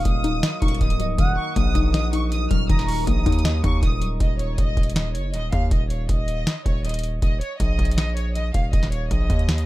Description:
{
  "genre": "hip hop, trap",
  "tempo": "159 BPM",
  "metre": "4/4",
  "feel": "half-time",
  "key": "Eb minor",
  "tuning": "A4 = 441 Hz",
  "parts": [
    { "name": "warm studio violin section", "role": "melody", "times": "0.0-9.6 s", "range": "Db5 to F6", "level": "-31 LUFS", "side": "equal", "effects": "dub echo" },
    { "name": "gliding portamento lead", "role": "second line", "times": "0.0-3.0 s", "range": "Eb5 to Bb5", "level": "-32 LUFS", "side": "right 4 dB", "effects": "chorus, phaser, dub echo" },
    { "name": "soft round pluck", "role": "accompaniment", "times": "0.0-4.2 s", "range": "Eb3 to Eb5", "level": "-28 LUFS", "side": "left 7 dB", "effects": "chorus" },
    { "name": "deep dark ambient pad", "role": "sustained chords", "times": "0.0-4.2 s", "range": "Gb3 to Eb5", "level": "-33 LUFS", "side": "left 1 dB", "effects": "chorus, built-in reverb" },
    { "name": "distorted 808-style bass", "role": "bass", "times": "0.0-9.7 s", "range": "Db1 to Eb2", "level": "-24 LUFS", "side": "equal", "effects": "distortion" },
    { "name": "booming analog drum machine", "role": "drums", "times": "0.1-9.7 s", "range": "hi-hat, kick drum, snare drum", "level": "-22 LUFS", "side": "equal", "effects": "none" }
  ],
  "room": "little or no reverb",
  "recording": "echo-heavy mix",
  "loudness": "-19 LUFS",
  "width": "side -17 dB against mid",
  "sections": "0.0-4.2 A section; 4.2-9.7 B section",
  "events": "none",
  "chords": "0.0 Ebm; 4.2 N.C.; 7.2 Eb5",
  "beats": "0.05 0.43 0.81 | 1.19 1.56 1.94 2.32 | 2.69 3.07 3.45 3.83 | 4.20 4.58 4.96 5.34 | 5.71 6.09 6.47 6.84 | 7.22 7.60 7.98 8.36 | 8.73 9.11 9.49"
}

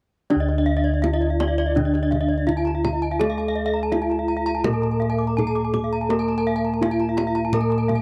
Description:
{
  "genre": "Balinese gamelan",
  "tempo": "83 BPM",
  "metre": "4/4",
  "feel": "straight",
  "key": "D pelog",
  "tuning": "A4 = 440 Hz",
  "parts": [
    { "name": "gamelan-type bronze metallophone", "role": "melody", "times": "0.3-8.0 s", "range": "D4 to Bb4-40c", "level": "-27 LUFS", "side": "equal", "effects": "none" },
    { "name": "gamelan-type bronze metallophone", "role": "accompaniment", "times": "0.3-8.0 s", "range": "D3 to Bb3-40c", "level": "-30 LUFS", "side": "equal", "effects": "none" },
    { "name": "gamelan-type bronze metallophone", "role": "arpeggios", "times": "0.3-8.0 s", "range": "D5 to D6", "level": "-32 LUFS", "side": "equal", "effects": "slapback echo" },
    { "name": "gamelan-type bossed gongs", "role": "bass", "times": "0.3-8.0 s", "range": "D2 to Bb4-40c", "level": "-27 LUFS", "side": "equal", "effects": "none" },
    { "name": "kendang", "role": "percussion", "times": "0.3-8.0 s", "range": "none", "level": "-31 LUFS", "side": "equal", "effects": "none" },
    { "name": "gamelan-type bronze metallophone", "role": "arpeggios", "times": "0.4-8.0 s", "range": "D5 to D6", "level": "-32 LUFS", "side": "equal", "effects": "none" }
  ],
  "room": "studio ambience",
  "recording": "dry, close 1970s-style studio recording",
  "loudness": "-22 LUFS",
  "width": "mono",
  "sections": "0.3-8.0 A section",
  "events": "none",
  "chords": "none",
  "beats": "| 0.31 1.03 1.75 2.48 | 3.20 3.92 4.65 5.37 | 6.09 6.81 7.52"
}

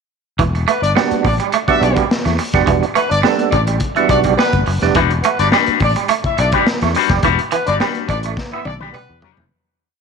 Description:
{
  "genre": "funk",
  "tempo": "105 BPM",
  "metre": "4/4",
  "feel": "straight",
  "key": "E minor",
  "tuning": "A4 = 443 Hz",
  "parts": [
    { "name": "clean electric guitar", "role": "riff", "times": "0.4-9.5 s", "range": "E3 to B3", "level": "-20 LUFS", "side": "right 11 dB", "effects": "tremolo" },
    { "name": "sustaining fretless electric bass", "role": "bass", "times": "0.4-9.5 s", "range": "E1 to E2", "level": "-19 LUFS", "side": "left 1 dB", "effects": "transformer saturation" },
    { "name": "crunchy breakbeat drum kit", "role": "drums", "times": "0.4-9.5 s", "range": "hi-hat, kick drum, snare drum, toms", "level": "-21 LUFS", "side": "left 2 dB", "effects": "none" },
    { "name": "warm horn section", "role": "second line", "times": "0.7-9.2 s", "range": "B3 to E5", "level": "-20 LUFS", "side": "left 2 dB", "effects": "none" },
    { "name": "percussive tonewheel organ", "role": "stabs", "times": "1.0-5.0 s", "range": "G3 to A4", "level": "-18 LUFS", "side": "right 11 dB", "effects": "chorus vibrato, slow rotary speaker" },
    { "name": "electric guitar with an envelope filter", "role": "accompaniment", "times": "5.0-9.4 s", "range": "G3 to B4", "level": "-18 LUFS", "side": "left 15 dB", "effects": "none" }
  ],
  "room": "moderate echo chamber reverb, RT60 1.9 s",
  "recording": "1960s-style stereo with parts hard left and right",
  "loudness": "-13 LUFS",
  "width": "side -5 dB against mid",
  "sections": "0.4-9.5 groove",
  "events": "fade-out 7.2-9.5; drum fill 8.4-9.5",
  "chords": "0.4 Em9",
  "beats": "| 0.39 0.96 1.53 2.10 | 2.67 3.24 3.81 4.38 | 4.95 5.52 6.09 6.66 | 7.23 7.80 8.37 8.94"
}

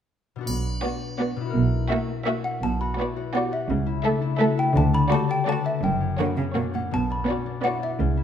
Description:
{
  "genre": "cinematic, playful, whimsical film cue",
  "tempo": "168 BPM",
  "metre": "3/4",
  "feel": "straight",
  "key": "B minor",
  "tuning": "A4 = 436 Hz",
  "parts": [
    { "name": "concert harp", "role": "arpeggios", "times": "0.4-8.2 s", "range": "F#2 to B4", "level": "-28 LUFS", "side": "left 7 dB", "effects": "none" },
    { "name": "rich studio double bass section", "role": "bass", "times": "0.5-8.2 s", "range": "F#1 to D2", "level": "-26 LUFS", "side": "right 3 dB", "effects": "none" },
    { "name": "warm studio cello section", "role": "bass", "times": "0.5-8.2 s", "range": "F#2 to D3", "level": "-28 LUFS", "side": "right 4 dB", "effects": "none" },
    { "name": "triangle", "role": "percussion", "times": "0.5-1.1 s", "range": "none", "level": "-38 LUFS", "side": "equal", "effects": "none" },
    { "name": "warm studio violin section", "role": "melody", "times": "0.8-7.9 s", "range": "C#5 to E5", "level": "-32 LUFS", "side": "left 1 dB", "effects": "none" },
    { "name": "warm studio violin section", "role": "second line", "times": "0.8-7.9 s", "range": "F#4 to A4", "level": "-31 LUFS", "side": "left 1 dB", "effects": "none" },
    { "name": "rich studio viola section", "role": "accompaniment", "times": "0.8-7.9 s", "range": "A3 to B3", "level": "-29 LUFS", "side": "right 3 dB", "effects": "none" },
    { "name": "xylophone with soft rubber mallets", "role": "melody", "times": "2.4-8.2 s", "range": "E5 to B5", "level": "-28 LUFS", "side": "left 1 dB", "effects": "none" }
  ],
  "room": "moderate scoring stage reverb, RT60 1.8 s",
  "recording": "none",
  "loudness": "-22 LUFS",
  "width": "side -9 dB against mid",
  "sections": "0.5-2.6 A section; 2.6-8.2 B section",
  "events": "none",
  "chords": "0.5 Bm; 1.5 F#7/B; 2.6 Bm; 3.7 A/C#; 4.8 D; 5.8 F#; 6.9 Bm",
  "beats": "| 0.47 0.83 1.19 | 1.54 1.90 2.26 | 2.63 2.99 3.34 | 3.70 4.06 4.41 | 4.77 5.12 5.47 | 5.83 6.20 6.56 | 6.92 7.28 7.64 | 8.00"
}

